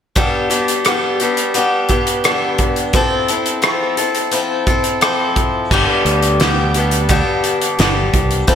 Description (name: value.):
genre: folk rock and heartland rock.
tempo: 86 BPM.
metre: 4/4.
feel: straight.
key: unclear.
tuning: A4 = 436 Hz.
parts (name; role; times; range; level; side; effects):
picked swing-style acoustic guitar; accompaniment; 0.2-8.6 s; G2 to A4; -16 LUFS; left 2 dB; slapback echo.
loose indie drum kit; drums; 0.2-8.6 s; crash cymbal, hi-hat, kick drum, rim click, snare drum; -17 LUFS; equal; none.
modern bright fingered electric bass; bass; 5.7-8.6 s; F1 to D2; -18 LUFS; right 1 dB; none.
room: moderate lush hall reverb, RT60 2.1 s.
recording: big arena sound.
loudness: -13 LUFS.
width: side -8 dB against mid.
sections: 0.2-5.7 A section; 5.7-8.6 B section.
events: none.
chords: 0.2 G; 2.9 Fmaj7; 5.7 G.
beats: | 0.16 0.86 1.55 2.25 | 2.94 3.63 4.33 5.02 | 5.71 6.41 7.10 7.79 | 8.49.